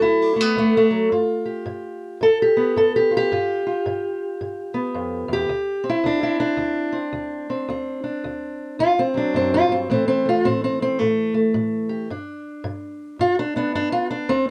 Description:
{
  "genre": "acoustic country blues, solo or duo",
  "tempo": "109 BPM",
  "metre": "4/4",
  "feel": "swing 62% on 8ths",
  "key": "unclear",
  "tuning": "A4 = 443 Hz",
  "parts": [
    { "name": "fingerpicked steel-string acoustic guitar", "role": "solo", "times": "0.0-14.5 s", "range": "D2 to A4", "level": "-22 LUFS", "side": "equal", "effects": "none" }
  ],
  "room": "light reverb",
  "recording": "dry, close 1970s-style studio recording",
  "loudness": "-21 LUFS",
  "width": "mono",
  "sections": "0.0-14.5 A section",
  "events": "none",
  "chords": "0.0 D; 1.1 G7; 5.5 D7; 9.9 A5; 12.1 G"
}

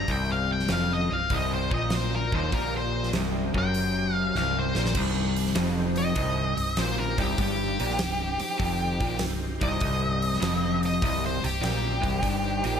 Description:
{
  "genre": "blues rock power trio and southern rock",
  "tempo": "99 BPM",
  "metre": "4/4",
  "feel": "swing 68% on 8ths",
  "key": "C minor",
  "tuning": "A4 = 440 Hz",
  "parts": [
    { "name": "octave-fuzz lead guitar", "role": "melody", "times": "0.0-12.8 s", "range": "G4 to G5", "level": "-29 LUFS", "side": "left 1 dB", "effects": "distortion" },
    { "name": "overdriven tonewheel organ", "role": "sustained chords", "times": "0.0-12.8 s", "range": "C4 to G5", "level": "-39 LUFS", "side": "right 3 dB", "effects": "slow rotary speaker, chorus vibrato" },
    { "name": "crunchy overdriven guitar", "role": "riff", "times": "0.0-12.8 s", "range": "C2 to Bb2", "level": "-28 LUFS", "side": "left 1 dB", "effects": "spring reverb" },
    { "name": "vintage muted fingered electric bass", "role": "bass", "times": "0.0-12.8 s", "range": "C1 to Bb1", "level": "-32 LUFS", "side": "equal", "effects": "none" },
    { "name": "big rock drum kit", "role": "drums", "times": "0.1-12.7 s", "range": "crash cymbal, hi-hat, kick drum, snare drum", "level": "-31 LUFS", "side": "right 1 dB", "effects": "none" }
  ],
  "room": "little or no reverb",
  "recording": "none",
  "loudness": "-24 LUFS",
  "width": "side -8 dB against mid",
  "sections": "0.0-5.0 A section; 5.0-12.8 B section",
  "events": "drum fill 4.4-5.0; lead electric guitar solo 5.0-12.8",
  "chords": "0.0 Cm"
}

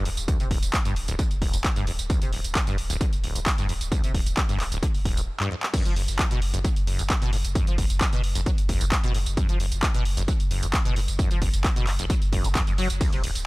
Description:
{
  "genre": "driving peak-time techno",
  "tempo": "132 BPM",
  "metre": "4/4",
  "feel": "straight",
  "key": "unclear",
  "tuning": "A4 = 441 Hz",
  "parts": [
    { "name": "acid bass, saw", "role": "riff", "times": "0.0-13.3 s", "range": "D1 to F#3", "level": "-31 LUFS", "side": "equal", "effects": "ensemble chorus, sidechain pumping, analog delay" },
    { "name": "warm sub bass", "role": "bass", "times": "0.0-13.5 s", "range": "D1 to F#1", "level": "-28 LUFS", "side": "equal", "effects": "sidechain pumping, low-pass filter" },
    { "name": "techno drum kit", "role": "drums", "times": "0.1-13.4 s", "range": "crash cymbal, handclaps, hi-hat, ride cymbal, tambourine", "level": "-30 LUFS", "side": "equal", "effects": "overdrive" },
    { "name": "electronic kick drum", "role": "drums", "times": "0.3-13.1 s", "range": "none", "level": "-24 LUFS", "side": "equal", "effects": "overdrive" }
  ],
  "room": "digital ambience",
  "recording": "dry, gritty hardware recording",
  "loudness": "-22 LUFS",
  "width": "side -22 dB against mid",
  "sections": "0.0-5.7 A section; 5.7-13.5 B section",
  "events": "break 5.3-5.7; drum fill 5.4-5.7; drop 5.7-13.5",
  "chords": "none"
}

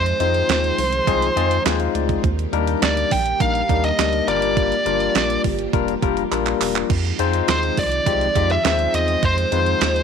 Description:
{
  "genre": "early-eighties boogie funk",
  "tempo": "103 BPM",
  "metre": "4/4",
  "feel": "straight",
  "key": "F dorian",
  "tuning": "A4 = 440 Hz",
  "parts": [
    { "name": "high-gain lead guitar", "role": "melody", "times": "0.0-10.0 s", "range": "C5 to G5", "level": "-21 LUFS", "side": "right 1 dB", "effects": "distortion, slapback echo" },
    { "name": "string machine, full ensemble", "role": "sustained chords", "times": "0.0-10.0 s", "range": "Eb3 to G4", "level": "-29 LUFS", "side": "right 2 dB", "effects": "ensemble chorus" },
    { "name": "rubbery square bass", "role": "bass", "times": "0.0-10.0 s", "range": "E1 to F2", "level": "-24 LUFS", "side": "right 1 dB", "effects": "none" },
    { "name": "clean 12-bit digital drum machine", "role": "drums", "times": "0.1-10.0 s", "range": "crash cymbal, handclaps, hi-hat, kick drum, snare drum", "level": "-23 LUFS", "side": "right 6 dB", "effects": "none" },
    { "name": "barky tine electric piano", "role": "accompaniment", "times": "0.2-10.0 s", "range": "G3 to Bb5", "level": "-23 LUFS", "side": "left 12 dB", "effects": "overdrive" }
  ],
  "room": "light reverb",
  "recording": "1960s-style stereo with parts hard left and right",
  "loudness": "-17 LUFS",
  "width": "side -6 dB against mid",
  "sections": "0.0-10.0 A section",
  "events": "tine electric piano fill 1.1-2.2; drum fill 6.3-6.9",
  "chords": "0.0 Fm7; 2.2 Ebmaj7; 4.3 Gm7; 6.9 Fm7"
}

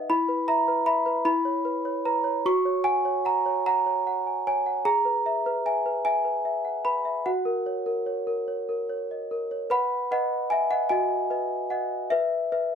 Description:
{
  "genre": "classical, lullaby for celesta",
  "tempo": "50 BPM (dotted quarters)",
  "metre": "6/8",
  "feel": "straight",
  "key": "B major",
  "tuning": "A4 = 440 Hz",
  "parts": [
    { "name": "celesta", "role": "solo", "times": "0.0-12.8 s", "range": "E4 to C#6", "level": "-23 LUFS", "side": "equal", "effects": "none" }
  ],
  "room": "light reverb",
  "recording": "close, detailed microphones",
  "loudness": "-23 LUFS",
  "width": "side -7 dB against mid",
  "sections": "0.0-9.7 A section; 9.7-12.8 B section",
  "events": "none",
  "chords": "0.1 E5; 1.3 C#m7/E; 2.5 F#; 4.9 E/G#; 7.3 F#; 9.7 B; 12.1 E5/B"
}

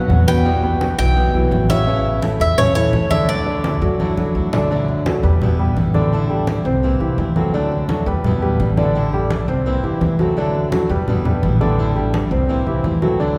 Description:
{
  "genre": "latin, Cuban son and guajira",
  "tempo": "170 BPM",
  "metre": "4/4",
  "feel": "straight",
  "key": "D major",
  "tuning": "A4 = 438 Hz",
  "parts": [
    { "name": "Cuban tres", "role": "melody", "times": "0.0-4.3 s", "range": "C#5 to G5", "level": "-23 LUFS", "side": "equal", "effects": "none" },
    { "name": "picked swing-style acoustic guitar", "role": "accompaniment", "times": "0.0-13.4 s", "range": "B2 to F#4", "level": "-28 LUFS", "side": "equal", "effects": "none" },
    { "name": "warm grand piano", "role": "arpeggios", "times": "0.0-13.4 s", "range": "B2 to D5", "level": "-23 LUFS", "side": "equal", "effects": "none" },
    { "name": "upright bass", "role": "bass", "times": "0.0-13.4 s", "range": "A1 to F#2", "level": "-23 LUFS", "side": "equal", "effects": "none" },
    { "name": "congas", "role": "percussion", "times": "0.1-13.4 s", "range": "none", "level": "-24 LUFS", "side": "equal", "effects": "none" }
  ],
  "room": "wet church reverb, RT60 3.7 s",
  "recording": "recorded in a church or concert hall",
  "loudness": "-18 LUFS",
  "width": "mono",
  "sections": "0.0-4.7 A section; 4.7-13.4 B section",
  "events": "drum fill 4.0-4.7",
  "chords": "0.5 Emadd9; 1.9 A; 3.3 Dadd9; 5.4 Em7; 6.1 A7sus4; 6.8 C7; 7.5 Dadd9; 8.2 Em7; 9.0 A7sus4; 9.7 C7; 10.4 Dadd9; 11.1 Em7; 11.8 A7sus4; 12.5 C7"
}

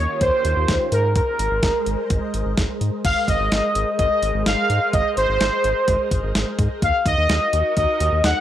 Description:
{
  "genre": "synth-pop",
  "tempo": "127 BPM",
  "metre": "4/4",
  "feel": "straight",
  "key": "unclear",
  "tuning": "A4 = 440 Hz",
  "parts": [
    { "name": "analog synth brass", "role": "melody", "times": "0.0-8.4 s", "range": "Bb4 to Gb5", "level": "-20 LUFS", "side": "equal", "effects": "chorus, tape echo" },
    { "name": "soft string machine", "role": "sustained chords", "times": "0.0-8.4 s", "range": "Eb3 to Eb5", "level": "-29 LUFS", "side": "equal", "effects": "phaser, ensemble chorus" },
    { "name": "round analog bass", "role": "bass", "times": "0.0-8.3 s", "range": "Ab1 to Ab2", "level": "-23 LUFS", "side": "equal", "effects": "none" },
    { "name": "clean 12-bit digital drum machine", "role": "drums", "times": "0.2-8.4 s", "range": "crash cymbal, hi-hat, kick drum, snare drum", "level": "-23 LUFS", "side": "equal", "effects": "none" }
  ],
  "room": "light reverb, digital ambience",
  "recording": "dry, gritty hardware recording, cassette tape",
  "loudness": "-17 LUFS",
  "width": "side -11 dB against mid",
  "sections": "0.0-3.0 A section; 3.0-8.4 B section",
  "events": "none",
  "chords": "0.0 Eb7; 0.9 Abadd9; 6.8 Ebm"
}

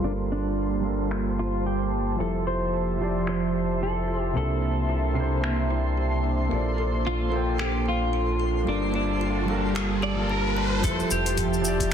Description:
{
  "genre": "sunset chillout",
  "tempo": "111 BPM",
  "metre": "4/4",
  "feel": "swing 57% on 16ths",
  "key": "F major",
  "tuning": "A4 = 440 Hz",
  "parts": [
    { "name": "clean electric guitar", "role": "melody", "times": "0.0-11.9 s", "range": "D4 to D5", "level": "-30 LUFS", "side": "equal", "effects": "wide subtle chorus, ping-pong delay" },
    { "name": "dark baby grand piano", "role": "accompaniment", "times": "0.0-11.9 s", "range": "C3 to A5", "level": "-30 LUFS", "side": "right 2 dB", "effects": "auto-pan, tape echo" },
    { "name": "airy breathy pad", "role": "sustained chords", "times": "0.0-11.9 s", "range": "C3 to A5", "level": "-31 LUFS", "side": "right 2 dB", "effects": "chorus, phaser" },
    { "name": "round analog bass", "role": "bass", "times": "0.0-11.9 s", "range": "F1 to C2", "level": "-28 LUFS", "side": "equal", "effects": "none" },
    { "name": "twinkling granular texture", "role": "texture", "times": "0.0-11.9 s", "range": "G4 to C6", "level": "-37 LUFS", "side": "right 1 dB", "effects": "built-in reverb" },
    { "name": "smooth R&B drum kit", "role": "drums", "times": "1.1-11.9 s", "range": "finger snaps, hi-hat, shaker, toms", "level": "-33 LUFS", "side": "left 1 dB", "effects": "soft clipping on snare" },
    { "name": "kalimba", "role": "arpeggios", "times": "2.2-11.9 s", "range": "D4 to A4", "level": "-36 LUFS", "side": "equal", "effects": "tape echo" },
    { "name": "riser", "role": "sound effects", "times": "8.1-10.8 s", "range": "none", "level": "-34 LUFS", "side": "right 1 dB", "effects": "none" },
    { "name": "electronic kick drum", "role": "drums", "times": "10.8-11.9 s", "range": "none", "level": "-28 LUFS", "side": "equal", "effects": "none" }
  ],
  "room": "moderate recital hall reverb, RT60 1.4 s",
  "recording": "dense, heavily limited modern master, low-pass filter",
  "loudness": "-23 LUFS",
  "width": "side -8 dB against mid",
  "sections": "0.0-10.8 A section; 10.8-11.9 B section",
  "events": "filter sweep 0.0-10.8; riser 8.1-10.8",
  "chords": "0.0 Gm9; 2.2 Fmaj9; 4.4 C13; 6.5 Bbmaj9; 8.7 Gm9; 10.8 Fmaj9"
}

